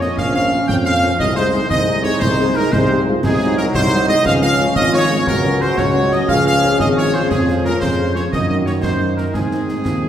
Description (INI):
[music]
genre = military-style march for wind band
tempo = 118 BPM (dotted quarters)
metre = 6/8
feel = straight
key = Ab major, Db major from 3.2 s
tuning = A4 = 441 Hz
[part]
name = clear trumpet section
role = melody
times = 0.0-10.1 s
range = Ab4 to G5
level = -20 LUFS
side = equal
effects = none
[part]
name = warm euphonium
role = second line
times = 0.0-10.1 s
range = C4 to Ab4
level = -23 LUFS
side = equal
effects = none
[part]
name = warm woodwind section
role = second line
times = 0.0-10.1 s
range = Ab4 to G5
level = -23 LUFS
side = left 1 dB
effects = none
[part]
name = mellow French horn section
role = accompaniment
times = 0.0-10.1 s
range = Gb3 to Ab4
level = -26 LUFS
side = left 2 dB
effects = none
[part]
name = clear trombone section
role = sustained chords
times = 0.0-10.1 s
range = Eb3 to Eb4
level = -24 LUFS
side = right 1 dB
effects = none
[part]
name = mellow tuba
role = bass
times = 0.0-10.1 s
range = Ab1 to Ab2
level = -19 LUFS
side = equal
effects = none
[part]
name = concert snare drum, concert bass drum and clash cymbals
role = drums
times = 0.0-10.0 s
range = none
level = -24 LUFS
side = equal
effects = none
[sound]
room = wet scoring stage reverb, RT60 1.9 s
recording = heard from further back in the room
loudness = -14 LUFS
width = side -10 dB against mid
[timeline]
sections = 0.0-10.1 A section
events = none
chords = 0.0 Bbm; 1.2 Ab/C; 3.2 Ab7/C; 4.3 Db; 5.3 Gb/Db; 6.3 Db; 7.3 Db/F; 8.3 Ebm/Gb; 9.3 Ab